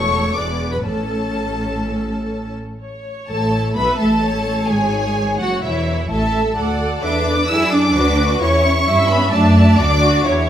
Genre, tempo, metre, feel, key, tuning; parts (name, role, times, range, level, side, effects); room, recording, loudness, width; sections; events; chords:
quick classical-period movement for string orchestra; 128 BPM; 4/4; rubato; A major; A4 = 440 Hz
warm symphonic violin section; melody; 0.0-10.2 s; E5 to E6; -22 LUFS; left 1 dB
clear symphonic violin section; second line; 0.0-10.5 s; C#4 to F#5; -22 LUFS; equal
rich symphonic viola section; accompaniment; 0.0-10.5 s; A3 to E5; -25 LUFS; equal
rich symphonic cello section; bass; 0.0-10.3 s; E2 to E4; -20 LUFS; right 1 dB
rich symphonic double bass section; bass; 0.0-10.5 s; E1 to G2; -20 LUFS; right 1 dB
wet stone room reverb, RT60 1.3 s; -15 LUFS; side -10 dB against mid
0.0-2.8 A section; 2.8-10.5 B section
0.4 E7; 0.8 A; 4.7 F#sus2; 5.6 A/E; 6.6 D; 8.4 C#dim/E; 9.3 D/F#